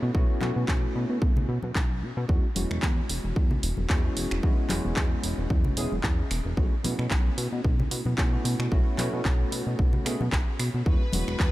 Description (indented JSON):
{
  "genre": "nu-disco, nu disco",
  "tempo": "112 BPM",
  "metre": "4/4",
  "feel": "swing 55% on 16ths",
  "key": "E major",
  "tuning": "A4 = 440 Hz",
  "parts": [
    { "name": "bell-like tine electric piano", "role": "accompaniment", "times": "0.0-11.5 s", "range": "G#3 to G#4", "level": "-33 LUFS", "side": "equal", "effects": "lush chorus, sidechain pumping, diffuse ambient delay" },
    { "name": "chorused synth bass", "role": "bass", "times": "0.0-11.5 s", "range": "E1 to B2", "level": "-29 LUFS", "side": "equal", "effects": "none" },
    { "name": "electronic kick drum", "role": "drums", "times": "0.1-11.5 s", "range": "none", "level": "-25 LUFS", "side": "equal", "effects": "overdrive" },
    { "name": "house drum kit", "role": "drums", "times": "0.4-11.5 s", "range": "finger snaps, handclaps, hi-hat", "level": "-34 LUFS", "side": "right 1 dB", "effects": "overdrive" },
    { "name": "congas", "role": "percussion", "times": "0.4-11.2 s", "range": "none", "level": "-36 LUFS", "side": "left 2 dB", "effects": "none" },
    { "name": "warm symphonic violin section", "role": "melody", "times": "10.9-11.5 s", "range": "B4", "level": "-35 LUFS", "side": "left 1 dB", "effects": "none" }
  ],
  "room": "light reverb, digital ambience",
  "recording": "faint mains hum",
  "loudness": "-24 LUFS",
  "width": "side -16 dB against mid",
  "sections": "0.0-11.5 A section",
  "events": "none",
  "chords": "0.0 B7sus4; 2.3 E69; 6.6 B7sus4; 10.9 E69",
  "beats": "| 0.15 0.69 1.22 1.76 | 2.29 2.83 3.37 3.90 | 4.44 4.97 5.51 6.04 | 6.58 7.12 7.65 8.19 | 8.72 9.26 9.79 10.33 | 10.87 11.40"
}